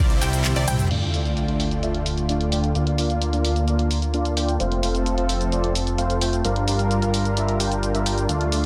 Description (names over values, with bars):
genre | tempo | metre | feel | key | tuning
EDM, festival progressive house | 130 BPM | 4/4 | straight | unclear | A4 = 440 Hz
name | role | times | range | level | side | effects
lush unison pad | sustained chords | 0.0-8.7 s | C3 to Bb4 | -31 LUFS | equal | chorus
unison pluck | arpeggios | 0.0-0.9 s | D5 to G5 | -36 LUFS | equal | subtle chorus, dub echo
supersaw chords | riff | 0.0-8.7 s | G3 to G5 | -27 LUFS | equal | low-pass filter, dub echo
fat analog bass | bass | 0.0-8.7 s | F1 to D2 | -27 LUFS | equal | none
pop drum kit | drums | 0.1-8.6 s | cabasa, crash cymbal, handclaps, hi-hat, ride cymbal, toms | -30 LUFS | equal | low-pass filter on hats, low-pass filter on cymbals, low-pass filter on perc, low-pass filter on snare, low-pass filter on toms
sub drop | sound effects | 0.9-2.8 s | none | -31 LUFS | equal | none
room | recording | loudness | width
light reverb, digital ambience | dense, heavily limited modern master | -22 LUFS | mono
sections
0.9-8.7 A section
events
drum fill 0.4-0.9; impact 0.9-2.8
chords
0.0 C; 0.9 Dm; 2.8 Bb/D; 4.6 F; 6.4 Gm7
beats
0.45 | 0.91 1.37 1.83 2.29 | 2.75 3.21 3.68 4.14 | 4.60 5.06 5.52 5.98 | 6.45 6.91 7.37 7.83 | 8.29